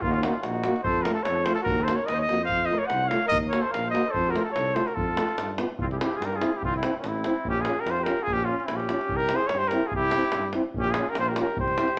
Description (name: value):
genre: balkan folk, Balkan brass band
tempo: 146 BPM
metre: 2/4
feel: swing 54% on 16ths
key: F phrygian dominant, C phrygian dominant from 5.8 s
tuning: A4 = 439 Hz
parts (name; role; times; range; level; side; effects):
- mellow trumpet; melody; 0.0-12.0 s; Db4 to Gb5; -29 LUFS; equal; none
- warm flugelhorn; second line; 0.0-12.0 s; Bb3 to Db5; -37 LUFS; equal; none
- mellow tuba; bass; 0.0-11.8 s; A1 to G2; -34 LUFS; equal; none
- davul; percussion; 0.0-12.0 s; none; -36 LUFS; equal; none
- warm French horn; accompaniment; 0.2-11.9 s; E4 to Gb4; -34 LUFS; equal; none
- warm euphonium; accompaniment; 0.2-11.9 s; A3 to Db4; -36 LUFS; equal; none
room: moderate studio reverb, RT60 0.8 s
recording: none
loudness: -26 LUFS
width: mono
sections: 0.0-5.8 A section; 5.8-12.0 B section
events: none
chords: 0.0 Ebm; 0.9 F; 1.7 Ebm; 2.5 F; 3.3 Ebm; 4.1 F; 5.4 G7; 5.8 C; 7.5 Bbm; 9.1 C; 10.8 Bbm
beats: | 0.03 0.45 | 0.86 1.27 | 1.68 2.09 | 2.50 2.91 | 3.32 3.74 | 4.15 4.56 | 4.97 5.38 | 5.80 6.21 | 6.62 7.04 | 7.45 7.86 | 8.28 8.69 | 9.10 9.52 | 9.93 10.34 | 10.75 11.16 | 11.58 11.99